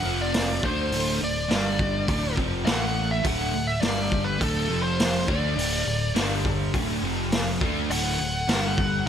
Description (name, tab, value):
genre	hard rock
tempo	103 BPM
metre	4/4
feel	straight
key	unclear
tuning	A4 = 444 Hz
part	bluesy overdriven lead guitar	melody	0.0-9.1 s	A4 to F#5	-29 LUFS	equal	distortion, ping-pong delay
part	crunchy overdriven guitar	riff	0.0-9.1 s	D2 to D4	-27 LUFS	equal	analog chorus
part	modern bright picked electric bass	bass	0.0-9.0 s	D1 to D2	-31 LUFS	equal	none
part	raw garage drum kit	drums	0.3-8.9 s	hi-hat, kick drum, snare drum	-27 LUFS	equal	gated reverb
room	light reverb, small room ambience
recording	bright 1980s-style digital production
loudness	-22 LUFS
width	side -8 dB against mid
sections	0.0-9.1 A section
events	none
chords	0.0 F5; 0.6 D5; 1.5 G5; 2.1 D5; 2.7 A5; 3.2 D; 3.8 G5; 4.4 D5; 4.7 F5; 5.3 D5; 6.2 G5; 6.7 D5; 7.0 F5; 7.6 D; 8.5 G5